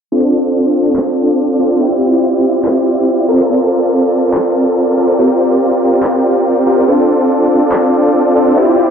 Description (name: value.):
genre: future bass.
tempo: 142 BPM.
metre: 4/4.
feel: half-time.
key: F major.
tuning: A4 = 441 Hz.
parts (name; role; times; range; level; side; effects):
supersaw chords; riff; 0.1-8.9 s; C4 to D5; -10 LUFS; equal; low-pass filter, tape echo.
electronic handclaps; drums; 1.0-7.8 s; none; -22 LUFS; left 1 dB; overdrive, low-pass filter on snare.
room: moderate digital room reverb, RT60 1.0 s, digital ambience.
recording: low-pass filter.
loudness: -10 LUFS.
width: side -7 dB against mid.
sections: 0.1-8.9 A section.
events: filter sweep on drum 0.1-8.9; filter sweep on supersaw synth 0.1-8.9; filter sweep 0.1-8.9.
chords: 0.1 F6; 1.8 Dm11; 3.3 C13sus4; 5.2 Bb69; 6.9 F6.